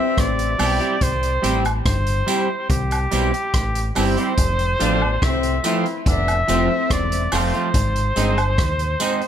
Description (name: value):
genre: roots reggae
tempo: 71 BPM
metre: 4/4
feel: straight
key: C major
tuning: A4 = 438 Hz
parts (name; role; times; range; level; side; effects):
- clear flugelhorn; melody; 0.0-9.3 s; G4 to E5; -23 LUFS; equal; tape echo, plate reverb
- warm horn section; second line; 0.0-7.3 s; G2 to E4; -25 LUFS; left 5 dB; tape echo
- deep dub fingered electric bass; bass; 0.2-8.9 s; E1 to Eb2; -22 LUFS; equal; none
- vintage drum kit; drums; 0.2-9.3 s; hi-hat, kick drum, rim click; -23 LUFS; equal; none
- clean electric guitar; accompaniment; 0.6-9.2 s; F3 to Ab4; -24 LUFS; right 3 dB; lush chorus, tape echo
- tambourine and woodblock; percussion; 0.6-9.2 s; none; -27 LUFS; equal; none
room: light reverb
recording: none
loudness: -17 LUFS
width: side -9 dB against mid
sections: 0.0-9.3 A section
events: none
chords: 0.0 C; 4.4 F; 7.7 Ab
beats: 0.17 | 1.01 1.86 2.70 3.54 | 4.38 5.22 6.06 6.90 | 7.74 8.58